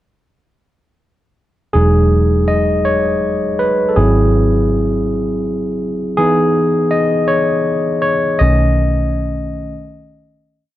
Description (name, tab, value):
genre	R&B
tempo	54 BPM (dotted quarters)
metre	6/8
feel	straight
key	E major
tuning	A4 = 440 Hz
part	barky tine electric piano	accompaniment	1.7-10.7 s	D#3 to D#5	-14 LUFS	equal	overdrive
part	vintage muted fingered electric bass	bass	1.8-10.6 s	E1 to C#2	-16 LUFS	equal	none
room	light reverb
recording	none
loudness	-13 LUFS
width	side -14 dB against mid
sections	1.7-10.6 verse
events	tine electric piano solo 1.7-10.6; fade-out 8.4-10.6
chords	1.7 Emaj9; 4.0 G#7b13; 6.2 C#m9; 8.4 B7